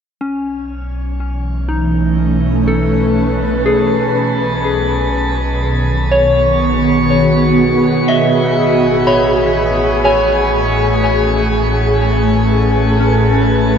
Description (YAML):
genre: ambient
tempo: 61 BPM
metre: 4/4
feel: straight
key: unclear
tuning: A4 = 440 Hz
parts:
  - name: ethereal airy pad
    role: sustained chords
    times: 1.3-13.8 s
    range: A2 to B4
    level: -13 LUFS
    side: equal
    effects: ensemble chorus, built-in reverb
  - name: soft synth bell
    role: arpeggios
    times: 0.2-13.8 s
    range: C#4 to B5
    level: -17 LUFS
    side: left 1 dB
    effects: chorus, phaser, ping-pong delay
  - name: warm sub bass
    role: bass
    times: 0.2-13.8 s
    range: A1 to B1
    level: -20 LUFS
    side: equal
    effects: none
room: wet shimmer reverb, RT60 8.0 s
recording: cassette tape, nothing above 7.9 kHz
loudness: -12 LUFS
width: side -7 dB against mid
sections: 0.2-13.8 A section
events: none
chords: 0.2 B7sus4; 4.1 B69; 8.1 Amaj7